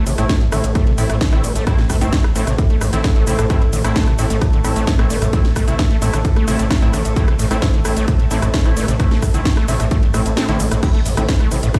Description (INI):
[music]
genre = driving peak-time techno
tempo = 131 BPM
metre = 4/4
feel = straight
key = A minor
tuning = A4 = 440 Hz
[part]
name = overdriven acid bass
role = riff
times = 0.0-11.8 s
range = G2 to C4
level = -26 LUFS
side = equal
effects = lush chorus, sidechain pumping, digital delay
[part]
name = analog drone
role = drone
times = 0.0-11.8 s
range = A2 to A3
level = -28 LUFS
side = equal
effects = chorus, sidechain pumping
[part]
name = gritty driven synth bass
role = bass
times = 0.1-11.7 s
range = G1 to C2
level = -22 LUFS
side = equal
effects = sidechain pumping
[part]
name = techno drum kit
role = drums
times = 0.1-11.8 s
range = crash cymbal, hi-hat, ride cymbal, rim click, shaker, snare drum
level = -27 LUFS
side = equal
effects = overdrive, sidechain pumping on hats, sidechain pumping on cymbals, sidechain pumping on perc
[part]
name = rave stab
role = stabs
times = 0.2-11.6 s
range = A3 to E4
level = -27 LUFS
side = equal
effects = chorus, built-in reverb, sidechain pumping, digital delay
[part]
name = electronic kick drum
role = drums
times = 0.3-11.8 s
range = none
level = -18 LUFS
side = equal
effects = overdrive
[sound]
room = little or no reverb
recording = played on a big sound system in a bare room, large studio reverb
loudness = -16 LUFS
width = mono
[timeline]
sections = 0.0-11.8 A section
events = kick drops out 10.4-10.8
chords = 0.0 Am